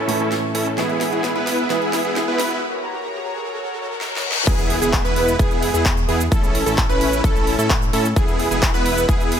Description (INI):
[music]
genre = EDM, festival progressive house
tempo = 130 BPM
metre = 4/4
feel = straight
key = E major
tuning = A4 = 440 Hz
[part]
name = warm concert grand piano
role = accompaniment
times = 0.0-2.6 s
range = A2 to E4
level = -25 LUFS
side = right 3 dB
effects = sidechain pumping, digital delay
[part]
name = lush unison pad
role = sustained chords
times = 0.0-9.4 s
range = G#3 to C#6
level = -29 LUFS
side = equal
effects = chorus, sidechain pumping
[part]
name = supersaw chords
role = riff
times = 0.0-9.4 s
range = B3 to B4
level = -22 LUFS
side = right 1 dB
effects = vintage 12-bit sampler grit, sidechain pumping, low-pass filter, digital delay
[part]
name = fat analog bass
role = bass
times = 0.0-9.4 s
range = E1 to A2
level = -27 LUFS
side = equal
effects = sidechain pumping, high-pass filter
[part]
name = riser, reverse cymbal and impact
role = sound effects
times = 2.3-6.3 s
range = none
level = -29 LUFS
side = left 2 dB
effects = none
[part]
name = big-room dance drum kit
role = drums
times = 0.1-9.4 s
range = crash cymbal, handclaps, hi-hat, shaker, snare drum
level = -26 LUFS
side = equal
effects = high-pass filter on hats, high-pass filter on snare, high-pass filter on cymbals, high-pass filter on perc, high-pass filter on room
[part]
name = plucky unison lead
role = arpeggios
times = 4.5-9.4 s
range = G#4 to B4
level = -24 LUFS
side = equal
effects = sidechain pumping, digital delay
[part]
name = electronic kick drum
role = drums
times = 4.5-9.2 s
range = none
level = -19 LUFS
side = equal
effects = overdrive
[sound]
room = light reverb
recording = high-pass filter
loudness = -17 LUFS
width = side -8 dB against mid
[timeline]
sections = 0.0-4.5 A section; 4.5-9.4 B section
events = build-up 0.0-4.5; drum fill 0.0-2.6, 4.0-4.5; filter sweep 0.0-4.5; riser 2.3-4.5; break 2.6-4.5; reverse cymbal 3.5-4.5; drop 4.5-9.4; impact 4.5-6.3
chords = 0.0 A; 0.8 E; 2.6 F#; 4.5 E; 6.3 A; 8.2 E